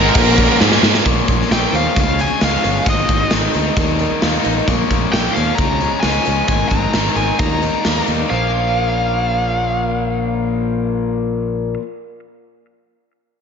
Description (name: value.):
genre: quiet-loud alternative rock.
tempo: 132 BPM.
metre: 4/4.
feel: straight.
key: Bb dorian.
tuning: A4 = 440 Hz.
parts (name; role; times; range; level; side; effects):
high-gain lead guitar; melody; 0.0-11.7 s; Bb4 to Bb5; -21 LUFS; equal; distortion, slapback echo, analog delay.
distorted electric guitar; riff; 0.0-1.1 s; Ab2 to F4; -20 LUFS; right 12 dB; overdrive.
distorted electric guitar; riff; 0.0-1.1 s; Ab2 to Bb3; -23 LUFS; right 3 dB; none.
raw garage guitar; riff; 0.0-11.8 s; Ab2 to F4; -21 LUFS; left 8 dB; overdrive, slapback echo.
growling fingered electric bass; bass; 0.0-11.7 s; G1 to Ab2; -21 LUFS; right 1 dB; overdrive.
big rock drum kit; drums; 0.1-8.2 s; crash cymbal, hi-hat, kick drum, snare drum; -17 LUFS; equal; none.
fingerpicked swing-style acoustic guitar; arpeggios; 1.1-11.8 s; Ab2 to Eb4; -26 LUFS; right 7 dB; slapback echo, analog delay.
room: moderate lush hall reverb, RT60 1.9 s, small room ambience.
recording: big arena sound, nothing above 7.5 kHz.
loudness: -14 LUFS.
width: side -6 dB against mid.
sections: 0.0-1.1 A section; 1.1-8.3 B section; 8.3-11.9 C section.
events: drum fill 0.6-1.1.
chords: 0.2 Bbm; 2.0 Db; 2.9 Ab; 3.8 Eb; 4.7 Bbm; 5.6 Db; 6.5 Ab; 7.4 Eb; 8.3 Bbm.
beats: 0.15 0.60 | 1.05 1.50 1.95 2.40 | 2.86 3.31 3.76 4.21 | 4.67 5.12 5.58 6.03 | 6.48 6.94 7.39 7.85 | 8.30 8.76 9.21 9.67 | 10.13 10.58 11.04 11.49.